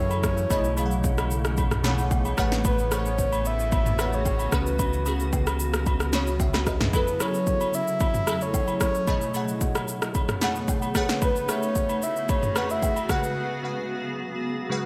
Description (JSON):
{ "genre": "amapiano", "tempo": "112 BPM", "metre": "4/4", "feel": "straight", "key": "F# dorian", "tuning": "A4 = 440 Hz", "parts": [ { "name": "breathy flute-like synth lead", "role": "melody", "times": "0.0-13.6 s", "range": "B4 to F#5", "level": "-32 LUFS", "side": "equal", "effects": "chorus, digital delay" }, { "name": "glassy digital keys", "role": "accompaniment", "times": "0.0-14.9 s", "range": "B2 to F#5", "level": "-33 LUFS", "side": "equal", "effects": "chorus" }, { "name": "granular cloud pad", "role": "sustained chords", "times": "0.1-14.9 s", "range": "C#3 to G#4", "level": "-35 LUFS", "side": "equal", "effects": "built-in reverb" }, { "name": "sub bass with octave", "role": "bass", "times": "0.0-6.9 s", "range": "A1 to F#2", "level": "-30 LUFS", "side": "equal", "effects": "none" }, { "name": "impact", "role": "sound effects", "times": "0.0-0.5 s", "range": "none", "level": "barely audible", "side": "none", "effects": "none" }, { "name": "deep house drum kit", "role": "drums", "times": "0.1-13.4 s", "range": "kick drum, rim click, shaker, snare drum, toms", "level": "-29 LUFS", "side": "equal", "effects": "overdrive" }, { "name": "agogo bells and woodblock", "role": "percussion", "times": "0.1-13.1 s", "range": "none", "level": "-37 LUFS", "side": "equal", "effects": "none" } ], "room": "light reverb", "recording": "none", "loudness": "-25 LUFS", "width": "mono", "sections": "0.0-14.9 A section", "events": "impact 0.0-0.5; break 13.4-14.9", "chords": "0.0 F#m9; 0.5 B13; 2.4 Amaj13; 4.5 C#7sus4; 6.9 F#m9; 9.1 B13; 11.0 Amaj13; 13.1 C#7sus4" }